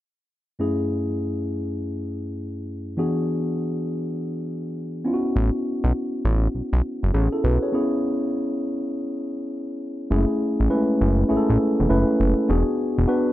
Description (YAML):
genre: R&B, new jack swing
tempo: 101 BPM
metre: 4/4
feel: swing 63% on 16ths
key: F# minor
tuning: A4 = 441 Hz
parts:
  - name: mellow tine electric piano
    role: accompaniment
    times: 0.6-13.3 s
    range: F#2 to C#5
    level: -22 LUFS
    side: equal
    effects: none
  - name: fat analog bass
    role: bass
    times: 5.4-13.1 s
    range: E1 to B1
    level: -20 LUFS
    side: equal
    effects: none
room: light reverb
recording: dark, warm production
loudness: -21 LUFS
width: side -14 dB against mid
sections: 0.6-10.1 A section; 10.1-13.3 B section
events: break 7.7-10.1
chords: 0.6 F#m7; 3.0 E7; 5.1 A69; 7.7 C#m7; 10.1 F#m7; 12.5 E7